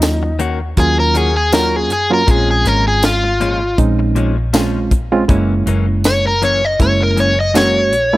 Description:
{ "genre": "straight-eighth soul blues", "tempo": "80 BPM", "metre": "4/4", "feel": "swing 55% on 16ths", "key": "Bb minor", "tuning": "A4 = 440 Hz", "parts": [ { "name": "crunchy overdriven guitar", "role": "melody", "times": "0.0-8.2 s", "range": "Eb4 to Eb5", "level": "-15 LUFS", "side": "left 1 dB", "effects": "none" }, { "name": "barky reed electric piano", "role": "accompaniment", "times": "0.0-8.2 s", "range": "Gb3 to Gb4", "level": "-18 LUFS", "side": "right 3 dB", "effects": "overdrive" }, { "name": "direct-recorded clean electric guitar", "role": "stabs", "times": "0.0-8.2 s", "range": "Gb2 to Gb4", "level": "-24 LUFS", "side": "left 5 dB", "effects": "spring reverb" }, { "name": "vintage muted fingered electric bass", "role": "bass", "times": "0.0-8.2 s", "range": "Gb1 to Gb2", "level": "-18 LUFS", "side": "equal", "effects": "none" }, { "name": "tight funk drum kit", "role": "drums", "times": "0.0-8.1 s", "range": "hi-hat, kick drum, snare drum, tambourine", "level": "-16 LUFS", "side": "equal", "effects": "none" } ], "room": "studio ambience", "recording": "none", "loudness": "-12 LUFS", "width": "side -17 dB against mid", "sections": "0.0-8.2 A section", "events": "overdriven electric guitar solo 0.0-8.2", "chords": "0.0 Ebm7; 2.3 Bbm7; 5.3 Gb7" }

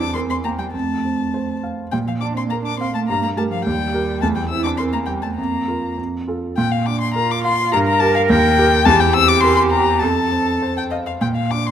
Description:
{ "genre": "quick classical-period movement for piano trio", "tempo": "103 BPM", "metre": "2/4", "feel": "rubato", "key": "Bb major", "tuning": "A4 = 440 Hz", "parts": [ { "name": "muted violin", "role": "melody", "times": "0.0-11.7 s", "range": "Eb5 to E6", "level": "-20 LUFS", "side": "left 6 dB", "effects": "none" }, { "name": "muted cello", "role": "second line", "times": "0.0-10.9 s", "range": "F3 to Bb4", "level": "-22 LUFS", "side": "right 5 dB", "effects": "none" }, { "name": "warm concert grand piano", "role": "accompaniment", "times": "0.0-11.7 s", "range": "Eb2 to G5", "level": "-20 LUFS", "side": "right 1 dB", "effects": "none" } ], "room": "moderate scoring stage reverb, RT60 1.7 s", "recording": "close, detailed microphones", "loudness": "-16 LUFS", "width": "side -9 dB against mid", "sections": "0.0-6.6 A section; 6.6-11.7 A section", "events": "none", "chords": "0.0 C7/E; 0.7 F; 1.9 Bb; 3.1 Gm; 3.7 Eb; 4.2 C7/E; 5.4 Fsus4; 6.0 F; 6.6 Bb; 7.7 Gm; 8.3 Eb; 8.9 C7/E; 10.0 F" }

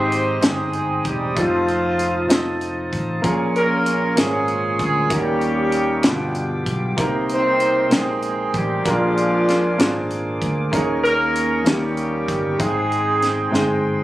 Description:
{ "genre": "slow gospel", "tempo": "64 BPM (dotted quarters)", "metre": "6/8", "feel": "straight", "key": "Ab major", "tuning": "A4 = 442 Hz", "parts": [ { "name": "mellow horn section", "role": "melody", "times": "0.0-13.8 s", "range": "F3 to C5", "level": "-20 LUFS", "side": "right 1 dB", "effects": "none" }, { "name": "clear concert grand piano", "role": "accompaniment", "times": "0.0-14.0 s", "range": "G2 to B5", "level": "-23 LUFS", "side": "equal", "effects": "none" }, { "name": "tonewheel organ", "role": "sustained chords", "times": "0.0-14.0 s", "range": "G4 to Eb6", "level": "-28 LUFS", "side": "right 3 dB", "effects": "slow rotary speaker, overdrive" }, { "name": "fingered electric bass", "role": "bass", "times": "0.0-14.0 s", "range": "Fb1 to Eb2", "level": "-27 LUFS", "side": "equal", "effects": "none" }, { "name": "tight funk drum kit", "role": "drums", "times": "0.1-13.7 s", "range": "hi-hat, kick drum, snare drum", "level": "-22 LUFS", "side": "equal", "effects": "none" } ], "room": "light reverb", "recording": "recorded on a phone in the room, club reverb, compression", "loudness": "-17 LUFS", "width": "side -15 dB against mid", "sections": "0.0-14.0 A section", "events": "drum fill 13.5-14.0", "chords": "0.0 Abmaj7; 1.4 F7; 3.2 Bbm7; 5.1 Eb7; 6.1 G7; 7.0 Cm7; 8.9 Bb7; 10.7 Eb7sus4; 11.7 Eb7; 12.6 Abmaj7" }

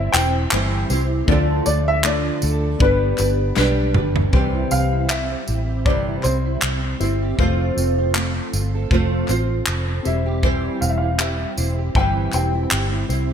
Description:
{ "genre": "acoustic pop", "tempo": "79 BPM", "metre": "4/4", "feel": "swing 55% on 16ths", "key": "unclear", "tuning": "A4 = 440 Hz", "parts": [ { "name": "warm upright piano", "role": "melody", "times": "0.0-13.1 s", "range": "B4 to G5", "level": "-25 LUFS", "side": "left 2 dB", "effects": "analog chorus, ping-pong delay" }, { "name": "nylon-string guitar", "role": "accompaniment", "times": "0.0-13.3 s", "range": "C3 to C5", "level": "-24 LUFS", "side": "right 1 dB", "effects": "double-tracked left and right" }, { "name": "warm concert grand piano", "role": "accompaniment", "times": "0.0-13.3 s", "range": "A3 to G5", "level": "-31 LUFS", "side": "left 6 dB", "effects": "wide subtle chorus" }, { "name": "fingerpicked plugged-in steel-string acoustic guitar", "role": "arpeggios", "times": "0.0-13.3 s", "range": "F3 to A4", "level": "-29 LUFS", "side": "right 6 dB", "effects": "ensemble chorus" }, { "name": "vintage muted fingered electric bass", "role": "bass", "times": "0.0-13.3 s", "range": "E1 to D2", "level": "-21 LUFS", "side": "equal", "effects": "none" }, { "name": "natural country drum kit", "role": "drums", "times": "0.1-13.3 s", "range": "handclaps, kick drum, snare drum, tambourine, toms", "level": "-22 LUFS", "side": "equal", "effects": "gated reverb" }, { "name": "group handclap", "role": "percussion", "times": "0.5-12.9 s", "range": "none", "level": "-35 LUFS", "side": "left 7 dB", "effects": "none" } ], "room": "light reverb, studio reverb", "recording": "bright 1980s-style digital production", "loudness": "-17 LUFS", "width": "side -8 dB against mid", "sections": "0.0-4.3 A section; 4.3-13.3 B section", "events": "drum fill 3.6-4.3", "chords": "0.0 C/E; 1.3 Dm; 2.8 G; 4.3 C; 7.4 F; 10.1 C/E" }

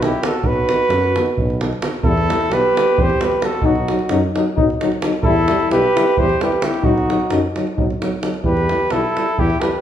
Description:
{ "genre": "balkan folk, Balkan brass band", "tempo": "262 BPM (eighths)", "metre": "7/8", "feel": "straight", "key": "unclear", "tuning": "A4 = 440 Hz", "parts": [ { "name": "mellow cornet", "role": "melody", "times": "0.0-9.8 s", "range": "F#4 to C5", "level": "-19 LUFS", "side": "right 2 dB", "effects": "none" }, { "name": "mellow flugelhorn", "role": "second line", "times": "0.0-9.8 s", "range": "D#4 to G4", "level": "-22 LUFS", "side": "left 3 dB", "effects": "none" }, { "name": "mellow trombone", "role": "accompaniment", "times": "0.0-9.7 s", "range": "B3 to E4", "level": "-23 LUFS", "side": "left 5 dB", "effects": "none" }, { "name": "warm euphonium", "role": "accompaniment", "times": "0.0-9.7 s", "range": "D#3 to G3", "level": "-26 LUFS", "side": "right 3 dB", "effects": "none" }, { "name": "mellow tuba", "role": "bass", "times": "0.0-9.5 s", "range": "B1 to F#2", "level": "-23 LUFS", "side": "equal", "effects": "none" }, { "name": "davul", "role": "percussion", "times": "0.0-9.8 s", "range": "none", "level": "-22 LUFS", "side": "right 1 dB", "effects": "none" } ], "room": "wet large studio reverb, RT60 1.1 s", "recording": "band playing live in one room", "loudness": "-15 LUFS", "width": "side -10 dB against mid", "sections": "0.0-2.0 A section; 2.0-9.8 B section", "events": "none", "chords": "0.0 B; 2.0 Em; 3.6 B; 5.2 Em; 6.8 B; 8.4 Em" }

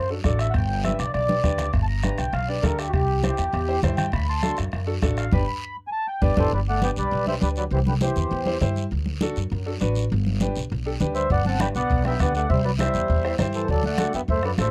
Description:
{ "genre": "latin, cumbia", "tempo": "201 BPM", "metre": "4/4", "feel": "straight", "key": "G major", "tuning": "A4 = 440 Hz", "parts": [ { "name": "mellow accordion", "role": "melody", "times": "0.0-8.6, 11.1-14.7 s", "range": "F#4 to C6", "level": "-28 LUFS", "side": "equal", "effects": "none" }, { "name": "upright bass", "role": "bass", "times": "0.0-14.7 s", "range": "G1 to G2", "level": "-28 LUFS", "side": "equal", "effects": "none" }, { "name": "clear upright piano", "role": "accompaniment", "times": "0.1-14.7 s", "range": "D4 to C5", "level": "-33 LUFS", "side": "equal", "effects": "none" }, { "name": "bombo", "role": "percussion", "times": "0.2-6.4, 11.3-14.7 s", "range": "none", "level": "-29 LUFS", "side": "equal", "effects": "none" }, { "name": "congas", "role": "percussion", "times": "0.2-14.7 s", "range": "none", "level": "-31 LUFS", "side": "equal", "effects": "none" }, { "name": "guiro", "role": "percussion", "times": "0.2-14.7 s", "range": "none", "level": "-42 LUFS", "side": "equal", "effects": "none" }, { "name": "bright trombone", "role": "second line", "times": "6.4-8.6, 11.2-14.7 s", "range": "D3 to D4", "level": "-33 LUFS", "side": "equal", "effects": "none" } ], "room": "little or no reverb", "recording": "dry, close 1970s-style studio recording", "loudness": "-23 LUFS", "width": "mono", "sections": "0.0-6.5 A section; 6.5-14.7 B section", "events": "accordion solo 0.0-6.5; drum fill 1.3-1.7; band accent 5.3-6.5", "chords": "0.0 D; 0.5 G; 2.9 C; 4.1 D7; 5.3 G; 7.7 C; 8.9 D; 10.1 G; 12.5 C; 13.7 D7" }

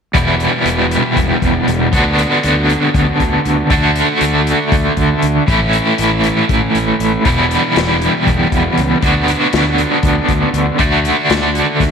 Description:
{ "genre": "psychedelic rock", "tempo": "237 BPM (eighths)", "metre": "7/8", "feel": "straight", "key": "E dorian", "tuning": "A4 = 441 Hz", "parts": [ { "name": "cranked stack guitar", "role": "riff", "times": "0.1-11.9 s", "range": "E2 to F#4", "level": "-13 LUFS", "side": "equal", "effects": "overdrive, tremolo" }, { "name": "fuzz fingered electric bass", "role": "bass", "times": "0.1-11.9 s", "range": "E1 to D2", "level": "-19 LUFS", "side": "equal", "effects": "overdrive" }, { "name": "vintage drum kit", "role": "drums", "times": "0.1-11.9 s", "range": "hi-hat, kick drum, snare drum", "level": "-19 LUFS", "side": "left 2 dB", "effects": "none" } ], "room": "light reverb, small room ambience", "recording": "1960s-style stereo", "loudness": "-11 LUFS", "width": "side -6 dB against mid", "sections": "0.1-11.9 A section", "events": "none", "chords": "0.1 Em; 1.9 Bm/D; 3.7 D; 5.5 A; 7.3 Em; 9.0 Bm/D; 10.8 D" }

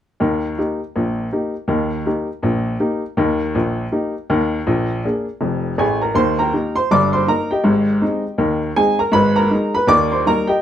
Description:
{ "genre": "jazz, stride piano", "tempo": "161 BPM", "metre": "4/4", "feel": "swing 60% on 8ths", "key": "Eb major", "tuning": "A4 = 436 Hz", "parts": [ { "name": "warm upright piano", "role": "solo", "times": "0.2-10.6 s", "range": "F1 to D6", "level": "-16 LUFS", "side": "equal", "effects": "none" } ], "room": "moderate club ambience, RT60 0.5 s", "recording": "none", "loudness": "-16 LUFS", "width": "side -10 dB against mid", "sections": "0.2-6.2 A section; 6.2-10.6 B section", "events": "none", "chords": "0.2 Eb; 4.7 Bb7; 6.2 Eb; 6.9 Eb/G; 7.6 Abmaj7; 9.1 Abm; 9.9 Eb" }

